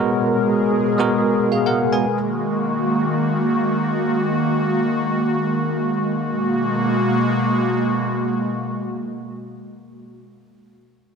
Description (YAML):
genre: amapiano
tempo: free time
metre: none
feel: none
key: G# minor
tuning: A4 = 438 Hz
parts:
  - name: bell-like tine electric piano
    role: accompaniment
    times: 0.0-2.2 s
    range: G#3 to G#5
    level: -18 LUFS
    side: equal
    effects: medium stereo tremolo
  - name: airy breathy pad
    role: sustained chords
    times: 0.0-10.1 s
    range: B2 to A#4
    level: -19 LUFS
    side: equal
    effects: chorus
room: light reverb, small room ambience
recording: dense, heavily limited modern master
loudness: -18 LUFS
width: side -6 dB against mid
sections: 0.0-6.3 A section; 6.3-10.5 B section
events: none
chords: 0.0 G#m9; 2.0 F#69; 6.3 G#m9